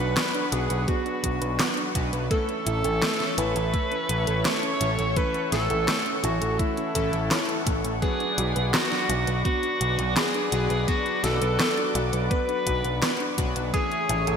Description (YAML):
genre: synthwave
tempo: 84 BPM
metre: 4/4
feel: straight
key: B dorian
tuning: A4 = 441 Hz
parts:
  - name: warm tenor saxophone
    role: melody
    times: 0.0-14.4 s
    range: E4 to C#5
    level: -29 LUFS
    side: equal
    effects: ping-pong delay
  - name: FM electric piano with soft pad layer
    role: second line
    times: 0.0-14.4 s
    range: E4 to C#5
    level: -34 LUFS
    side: left 2 dB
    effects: none
  - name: warm analog pad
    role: sustained chords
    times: 0.0-14.4 s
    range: A3 to D6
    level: -33 LUFS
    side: equal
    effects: chorus, sidechain pumping
  - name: thumb-piano-like synth pluck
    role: arpeggios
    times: 0.0-14.4 s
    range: A3 to E5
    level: -33 LUFS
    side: right 3 dB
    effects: chorus, ping-pong delay
  - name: chorused polysynth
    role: stabs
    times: 0.0-14.4 s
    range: E3 to C#5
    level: -33 LUFS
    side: left 1 dB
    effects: ping-pong delay
  - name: overdriven picked electric bass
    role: bass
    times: 0.0-14.4 s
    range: A1 to B1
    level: -28 LUFS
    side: equal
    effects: tube saturation, sidechain pumping
  - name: pop drum kit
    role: drums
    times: 0.2-14.4 s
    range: handclaps, hi-hat, snare drum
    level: -28 LUFS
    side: equal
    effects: overdrive, gated reverb
  - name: electronic kick drum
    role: drums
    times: 0.9-13.9 s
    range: none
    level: -28 LUFS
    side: equal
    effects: overdrive
room: moderate lush hall reverb, RT60 2.6 s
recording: bright 1980s-style digital production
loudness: -22 LUFS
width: side -7 dB against mid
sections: 0.0-14.4 A section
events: none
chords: 0.0 Bm; 2.3 A; 8.0 Bm; 13.7 A